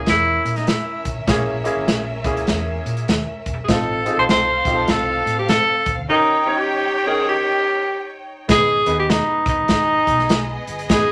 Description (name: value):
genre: uptempo 1960s-style soul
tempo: 100 BPM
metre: 4/4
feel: swing 62% on 8ths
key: unclear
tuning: A4 = 440 Hz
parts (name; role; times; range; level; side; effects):
- breathy tenor saxophone; melody; 0.0-11.1 s; D#4 to C5; -20 LUFS; equal; none
- clear grand piano; accompaniment; 0.0-11.1 s; A#3 to G5; -27 LUFS; equal; none
- hollow-body short-scale fingered electric bass; bass; 0.0-11.1 s; E1 to A#2; -30 LUFS; equal; none
- rich studio violin section; second line; 0.1-11.1 s; B3 to G5; -31 LUFS; equal; none
- natural country drum kit; drums; 0.1-11.1 s; hi-hat, kick drum, snare drum; -23 LUFS; equal; none
room: wet studio reverb, RT60 0.5 s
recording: none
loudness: -19 LUFS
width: mono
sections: 0.0-8.5 A section; 8.5-11.1 B section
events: none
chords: 0.0 A#m7b5; 3.7 F7/A; 6.1 D#7; 8.5 G#m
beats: 0.08 0.68 | 1.28 1.88 2.48 3.08 | 3.68 4.29 4.88 5.49 | 6.09 6.69 7.29 7.89 | 8.49 9.09 9.69 10.29 | 10.90